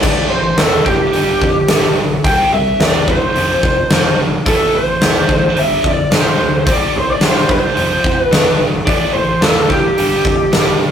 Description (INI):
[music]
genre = hard rock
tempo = 109 BPM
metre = 4/4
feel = straight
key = A minor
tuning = A4 = 440 Hz
[part]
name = lead guitar through a small cranked amp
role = melody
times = 0.0-10.8 s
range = G4 to G5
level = -15 LUFS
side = equal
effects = overdrive
[part]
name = biting overdriven guitar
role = riff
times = 0.0-10.9 s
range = F2 to C4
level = -25 LUFS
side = left 5 dB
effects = none
[part]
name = heavy high-gain guitar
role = riff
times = 0.0-10.9 s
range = F2 to C4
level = -22 LUFS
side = right 5 dB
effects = distortion
[part]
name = picked electric bass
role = bass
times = 0.0-10.9 s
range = F1 to G2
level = -23 LUFS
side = equal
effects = none
[part]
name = huge arena drum kit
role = drums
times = 0.0-10.7 s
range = crash cymbal, hi-hat, kick drum, snare drum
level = -15 LUFS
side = equal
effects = none
[sound]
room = moderate studio reverb, RT60 0.6 s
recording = rough rehearsal-room recording, warm saturation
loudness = -11 LUFS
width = side -8 dB against mid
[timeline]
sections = 0.0-10.9 A section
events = none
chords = 0.0 A5; 1.2 G5; 2.3 C; 3.4 F5; 4.5 Am; 5.6 G5; 6.7 C5; 7.8 F5; 8.9 A5; 10.0 G5